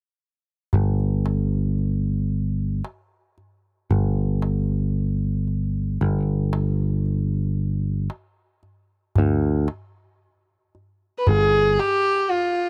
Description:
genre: Turkish makam ensemble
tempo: 114 BPM (eighths)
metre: 10/8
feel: straight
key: G makam hicaz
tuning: A4 = 442 Hz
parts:
  - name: picked electric bass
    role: bass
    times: 0.7-11.8 s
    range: G1 to D2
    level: -24 LUFS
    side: equal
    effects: none
  - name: darbuka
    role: percussion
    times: 0.7-12.5 s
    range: none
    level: -26 LUFS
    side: equal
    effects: none
  - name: clear kamancheh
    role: melody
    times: 11.2-12.7 s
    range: F4 to B4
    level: -21 LUFS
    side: equal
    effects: none
room: little or no reverb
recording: dry, close 1970s-style studio recording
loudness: -23 LUFS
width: mono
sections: 0.7-11.3 A section; 11.3-12.7 B section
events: none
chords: none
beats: | 0.73 1.26 1.79 2.31 2.84 3.37 3.90 4.42 4.95 5.48 | 6.00 6.53 7.06 7.59 8.11 8.64 9.17 9.69 10.22 10.74 | 11.27 11.80 12.32

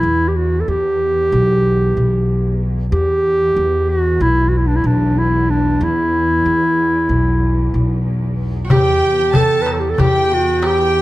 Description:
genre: Turkish makam ensemble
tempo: 187 BPM (eighths)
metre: 9/8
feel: straight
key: E makam huseyni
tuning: A4 = 439 Hz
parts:
  - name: warm clarinet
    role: melody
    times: 0.0-11.0 s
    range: D4 to B4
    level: -16 LUFS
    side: equal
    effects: none
  - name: upright bass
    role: bass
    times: 0.0-11.0 s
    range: B1 to E2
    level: -18 LUFS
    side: equal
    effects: none
  - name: rich symphonic cello section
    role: drone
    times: 0.0-11.0 s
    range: E2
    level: -26 LUFS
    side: equal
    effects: none
  - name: qanun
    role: second line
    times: 8.6-11.0 s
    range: F#4-30c to A4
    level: -23 LUFS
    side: right 3 dB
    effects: none
  - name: warm studio violin section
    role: second line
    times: 8.7-11.0 s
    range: G5 to A5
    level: -22 LUFS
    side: left 1 dB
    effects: none
  - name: darbuka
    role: percussion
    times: 8.7-11.0 s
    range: none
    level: -18 LUFS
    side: left 2 dB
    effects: none
room: light reverb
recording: none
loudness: -13 LUFS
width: side -17 dB against mid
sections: 0.0-8.7 A section; 8.7-11.0 B section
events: none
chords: none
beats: | 0.04 0.36 0.68 1.00 1.32 1.64 1.96 2.28 2.60 | 2.93 3.25 3.57 3.89 4.21 4.53 4.85 5.17 5.50 | 5.82 6.14 6.46 6.78 7.10 7.42 7.74 8.06 8.38 | 8.71 9.03 9.35 9.67 9.99 10.31 10.63 10.95

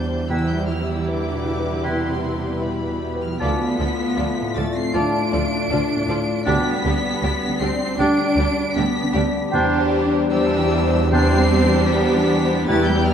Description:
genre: cinematic, emotional film score for orchestra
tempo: 78 BPM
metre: 4/4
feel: rubato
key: unclear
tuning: A4 = 437 Hz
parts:
  - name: clear studio violin section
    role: melody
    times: 0.0-13.1 s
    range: B5 to D7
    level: -30 LUFS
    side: left 1 dB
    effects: none
  - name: clear studio violin section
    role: second line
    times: 0.0-13.1 s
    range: G4 to D5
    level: -29 LUFS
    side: left 2 dB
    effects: none
  - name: felt-muted upright piano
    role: accompaniment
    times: 0.0-13.1 s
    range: D2 to D5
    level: -26 LUFS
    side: left 2 dB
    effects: none
  - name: rich studio viola section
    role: accompaniment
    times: 0.0-13.1 s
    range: F3 to F4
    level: -25 LUFS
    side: right 1 dB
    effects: none
  - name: mellow French horn section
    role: sustained chords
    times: 0.0-13.1 s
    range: G3 to F4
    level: -26 LUFS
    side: left 4 dB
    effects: none
  - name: clear studio double bass section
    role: bass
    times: 0.0-13.1 s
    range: D2 to E2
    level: -25 LUFS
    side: right 3 dB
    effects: none
  - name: rich studio cello section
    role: bass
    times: 0.0-13.1 s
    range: B2 to D4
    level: -25 LUFS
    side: right 2 dB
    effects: none
  - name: clear clarinet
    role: second line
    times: 0.3-13.0 s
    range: D4 to F4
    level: -28 LUFS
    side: left 2 dB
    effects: none
  - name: clear oboe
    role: second line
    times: 0.3-13.0 s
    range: B4 to D5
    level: -32 LUFS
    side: right 1 dB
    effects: none
  - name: mellow hollow small flute group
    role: second line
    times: 0.3-13.0 s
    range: G5 to A5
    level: -30 LUFS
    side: right 2 dB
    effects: none
room: wet scoring stage reverb, RT60 2.0 s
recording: dark, warm production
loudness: -18 LUFS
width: side -8 dB against mid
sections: 0.0-13.1 A section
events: none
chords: 0.3 Em; 3.4 Dm; 6.5 G/D; 9.5 Cadd9/E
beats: | 0.30 1.08 1.85 2.62 | 3.41 4.18 4.95 5.71 | 6.47 7.23 8.00 8.76 | 9.53 10.31 11.12 11.90 | 12.68

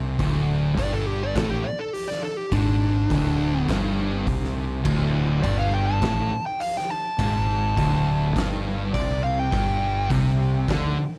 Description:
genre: stoner and doom metal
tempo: 103 BPM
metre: 4/4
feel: straight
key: unclear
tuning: A4 = 440 Hz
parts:
  - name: thick fuzz guitar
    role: riff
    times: 0.0-11.0 s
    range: D2 to D3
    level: -29 LUFS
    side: equal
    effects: distortion
  - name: thick fuzz guitar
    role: riff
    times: 0.0-11.0 s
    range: D2 to D3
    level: -30 LUFS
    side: equal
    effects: distortion
  - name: fuzz fingered electric bass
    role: bass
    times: 0.0-11.0 s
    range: D1 to D2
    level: -30 LUFS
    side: equal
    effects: overdrive
  - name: oversized low-tuned drum kit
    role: drums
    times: 0.2-10.8 s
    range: crash cymbal, hi-hat, kick drum, snare drum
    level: -32 LUFS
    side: equal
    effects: none
  - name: fuzz lead guitar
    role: melody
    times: 0.8-10.1 s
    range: D4 to A5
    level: -30 LUFS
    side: equal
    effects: distortion, tape echo
  - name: distorted electric guitar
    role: riff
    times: 4.8-11.0 s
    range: D2 to D3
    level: -36 LUFS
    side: equal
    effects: overdrive
room: little or no reverb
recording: none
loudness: -23 LUFS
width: mono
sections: 0.0-11.2 A section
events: lead electric guitar solo 0.0-11.2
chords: 0.0 D5; 9.5 G5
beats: | 0.20 0.78 1.36 1.95 | 2.53 3.12 3.70 4.29 | 4.87 5.45 6.03 6.62 | 7.20 7.78 8.36 8.94 | 9.52 10.10 10.69

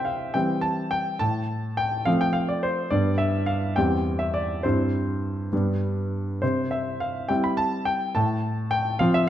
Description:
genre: classical-period piano sonatina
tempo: 70 BPM (dotted quarters)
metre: 6/8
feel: rubato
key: C major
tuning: A4 = 440 Hz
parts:
  - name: warm grand piano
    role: solo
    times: 0.0-9.3 s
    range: E2 to B5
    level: -22 LUFS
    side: equal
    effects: none
room: wet recital hall reverb, RT60 1.5 s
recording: none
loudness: -22 LUFS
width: side -11 dB against mid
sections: 0.0-9.3 A section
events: none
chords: 0.0 C; 1.2 F/A; 2.9 G; 3.8 C/E; 4.6 C/G; 5.5 G; 6.4 C; 8.2 F/A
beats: 0.34 | 1.21 2.07 | 2.91 3.77 | 4.64 5.52 | 6.42 7.30 | 8.16 9.01

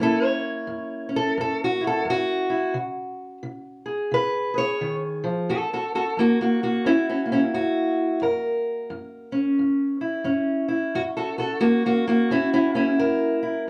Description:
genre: acoustic country blues, solo or duo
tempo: 88 BPM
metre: 4/4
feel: swing 61% on 8ths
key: F# mixolydian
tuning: A4 = 441 Hz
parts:
  - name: fingerpicked steel-string acoustic guitar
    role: solo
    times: 0.0-13.7 s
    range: F#2 to C#5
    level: -24 LUFS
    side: equal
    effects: none
room: wet studio reverb, RT60 0.5 s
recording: heard from further back in the room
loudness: -24 LUFS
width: mono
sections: 0.0-5.5 A section; 5.5-13.7 B section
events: steel-string acoustic guitar solo 0.0-5.5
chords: 0.0 F#7; 2.7 C#5; 5.5 F#7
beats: | 0.00 0.69 1.37 2.06 | 2.74 3.43 4.11 4.80 | 5.48 6.17 6.85 7.53 | 8.21 8.90 9.58 10.26 | 10.94 11.62 12.30 12.98 | 13.66

